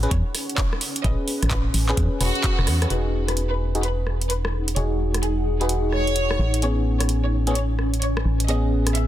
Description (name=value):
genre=UK garage, two-step garage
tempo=129 BPM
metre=4/4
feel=swing 64% on 16ths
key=E major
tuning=A4 = 442 Hz
part: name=FM electric piano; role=stabs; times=0.0-9.1 s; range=B3 to B4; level=-28 LUFS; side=left 1 dB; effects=chorus, low-pass filter, digital delay
part: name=organ-like FM bass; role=bass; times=0.0-9.1 s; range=E1 to E2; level=-22 LUFS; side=equal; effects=none
part: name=garage drum kit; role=drums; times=0.0-9.1 s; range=handclaps, hi-hat, rim click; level=-28 LUFS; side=equal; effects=none
part: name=granular cloud pad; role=texture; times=0.0-9.1 s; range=C#4 to G#5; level=-30 LUFS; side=equal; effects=built-in reverb, sidechain pumping
part: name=clear studio violin section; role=melody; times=0.1-9.1 s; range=F#4 to E5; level=-30 LUFS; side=equal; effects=digital delay
part: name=electronic kick drum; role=drums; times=0.1-2.6 s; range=none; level=-24 LUFS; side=equal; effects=none
room=light reverb, digital ambience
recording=dense, heavily limited modern master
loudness=-20 LUFS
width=side -13 dB against mid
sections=0.0-2.9 A section; 2.9-9.1 B section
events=band accent 2.4; drum fill 2.7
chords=0.0 Amaj9; 2.9 Emaj9; 6.4 Amaj9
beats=0.11 0.58 | 1.04 1.51 1.97 2.44 | 2.90 3.37 3.83 4.30 | 4.76 5.23 5.70 6.16 | 6.62 7.09 7.55 8.02 | 8.48 8.95